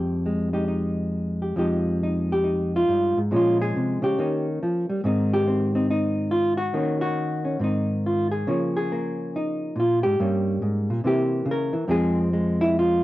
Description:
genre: solo jazz.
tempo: 140 BPM.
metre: 4/4.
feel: swing 65% on 8ths, rubato.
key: F minor.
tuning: A4 = 438 Hz.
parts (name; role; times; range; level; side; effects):
hollow-body jazz guitar; solo; 0.0-13.0 s; F2 to Bb4; -21 LUFS; equal; cassette tape.
room: light reverb.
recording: home recording on cassette.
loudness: -21 LUFS.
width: side -16 dB against mid.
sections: 0.0-1.6 A section; 1.6-13.0 B section.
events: hollow-body jazz guitar solo 1.6-13.0.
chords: 0.0 Fm9; 3.3 Bbm7; 4.2 Eb9; 5.0 Abmaj7; 6.7 Ebm7; 7.6 Ab; 8.5 Db6; 10.2 Gdim; 11.0 C7; 11.9 Fm.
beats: 0.25 0.69 1.13 | 1.58 2.02 2.46 2.89 | 3.32 3.75 4.18 4.61 | 5.03 5.45 5.87 6.30 | 6.72 7.15 7.58 8.03 | 8.47 8.91 9.35 9.77 | 10.20 10.62 11.04 11.47 | 11.90 12.32 12.76.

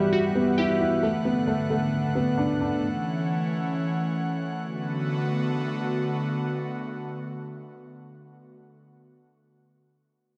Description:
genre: hip hop.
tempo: 133 BPM.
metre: 4/4.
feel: half-time.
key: B minor.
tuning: A4 = 440 Hz.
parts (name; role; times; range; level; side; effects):
dark concert grand piano; accompaniment; 0.0-2.9 s; G3 to E4; -26 LUFS; equal; low-pass filter.
airy breathy pad; sustained chords; 0.0-8.5 s; D3 to F#5; -30 LUFS; equal; chorus.
glassy digital keys; arpeggios; 0.0-1.0 s; F#4 to E5; -31 LUFS; equal; chorus, low-pass filter, digital delay.
room: light reverb.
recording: dark, warm production.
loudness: -27 LUFS.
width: mono.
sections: 0.0-4.6 A section; 4.6-8.2 B section.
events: none.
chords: 0.0 Emadd9; 1.0 Bm7; 2.8 F#m7; 4.6 Bm7.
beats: 0.13 0.58 | 1.03 1.48 1.93 2.38 | 2.83 3.29 3.74 4.19 | 4.64 5.09 5.54 5.99 | 6.44 6.89 7.34 7.80.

